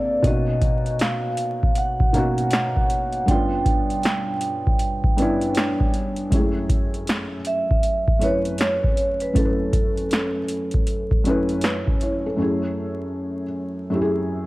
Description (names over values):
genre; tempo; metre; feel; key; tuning
lo-fi hip hop; 79 BPM; 4/4; swing 63% on 16ths; F# minor; A4 = 439 Hz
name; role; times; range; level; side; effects
vibraphone with medium mallets; melody; 0.0-11.6 s; A4 to G5; -25 LUFS; right 2 dB; none
felt-muted upright piano; accompaniment; 0.0-14.5 s; F#2 to C#5; -24 LUFS; equal; cassette tape
electro analog drum machine; drums; 0.2-12.2 s; hi-hat, kick drum, snare drum; -22 LUFS; equal; none
room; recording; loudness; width
small room ambience; vinyl crackle; -19 LUFS; side -19 dB against mid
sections
0.0-12.4 A section; 12.4-14.5 B section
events
break 0.0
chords
0.2 Bmaj7; 3.3 G7#11; 6.3 F#m9